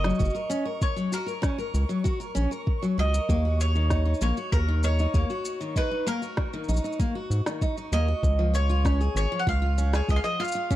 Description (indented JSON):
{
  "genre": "folktronica",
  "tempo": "97 BPM",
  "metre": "4/4",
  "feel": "straight",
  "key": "F# major",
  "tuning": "A4 = 442 Hz",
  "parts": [
    { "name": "mandolin", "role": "melody", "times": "0.0-10.8 s", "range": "A#4 to F#5", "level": "-31 LUFS", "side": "right 1 dB", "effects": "tape echo" },
    { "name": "picked steel-string acoustic guitar", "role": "arpeggios", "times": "0.0-10.8 s", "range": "D#3 to A#4", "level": "-30 LUFS", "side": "left 2 dB", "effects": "none" },
    { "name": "round analog bass", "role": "bass", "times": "0.0-10.2 s", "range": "F#1 to G#2", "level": "-23 LUFS", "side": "equal", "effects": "tube saturation" },
    { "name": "electronic snare drum and shaker", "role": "drums", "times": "0.0-10.8 s", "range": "none", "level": "-36 LUFS", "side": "equal", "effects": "overdrive, studio reverb" },
    { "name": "flickering grainy texture", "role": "texture", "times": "0.0-10.8 s", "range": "C#6", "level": "-44 LUFS", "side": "right 3 dB", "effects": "built-in reverb" },
    { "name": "electronic kick drum", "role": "drums", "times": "0.2-10.8 s", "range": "none", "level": "-26 LUFS", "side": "equal", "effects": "overdrive, studio reverb" }
  ],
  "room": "digital ambience",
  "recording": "dry, close 1970s-style studio recording",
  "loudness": "-23 LUFS",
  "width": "side -14 dB against mid",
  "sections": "0.0-10.8 A section",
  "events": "none",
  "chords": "0.0 F#; 3.3 D#m; 8.2 C#"
}